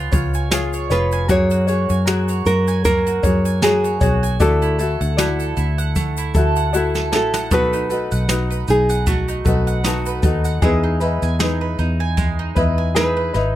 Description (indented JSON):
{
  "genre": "acoustic pop",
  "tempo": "77 BPM",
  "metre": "4/4",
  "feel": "swing 55% on 16ths",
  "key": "B major",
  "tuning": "A4 = 440 Hz",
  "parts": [
    { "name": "ukulele", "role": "accompaniment", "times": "0.0-13.6 s", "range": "D#4 to D5", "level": "-23 LUFS", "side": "left 5 dB", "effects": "none" },
    { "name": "bowl-back mandolin", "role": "arpeggios", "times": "0.0-13.6 s", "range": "G#3 to G#5", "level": "-26 LUFS", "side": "right 8 dB", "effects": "none" },
    { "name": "vintage muted fingered electric bass", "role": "bass", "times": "0.0-13.6 s", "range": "E#1 to F#2", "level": "-20 LUFS", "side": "equal", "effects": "none" },
    { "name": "jazz brush drum kit", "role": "drums", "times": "0.1-13.5 s", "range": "kick drum, shaker, snare drum", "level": "-21 LUFS", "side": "equal", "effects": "none" },
    { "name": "egg shaker", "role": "percussion", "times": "0.1-10.6 s", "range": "none", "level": "-34 LUFS", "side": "left 7 dB", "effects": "none" },
    { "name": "nylon-string guitar", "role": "melody", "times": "0.9-13.6 s", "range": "F#4 to C#5", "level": "-21 LUFS", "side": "right 1 dB", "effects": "none" }
  ],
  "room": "little or no reverb",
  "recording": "close, detailed microphones",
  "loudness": "-16 LUFS",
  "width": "side -13 dB against mid",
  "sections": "0.0-13.6 A section",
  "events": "drum fill 6.7-7.5",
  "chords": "0.0 C#7; 1.3 F#add9; 4.4 Dadd9; 7.5 B7; 10.6 Emaj7",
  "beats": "0.52 | 1.29 2.07 2.85 3.62 | 4.40 5.18 5.96 6.74 | 7.51 8.29 9.07 9.85 | 10.62 11.40 12.18 12.96"
}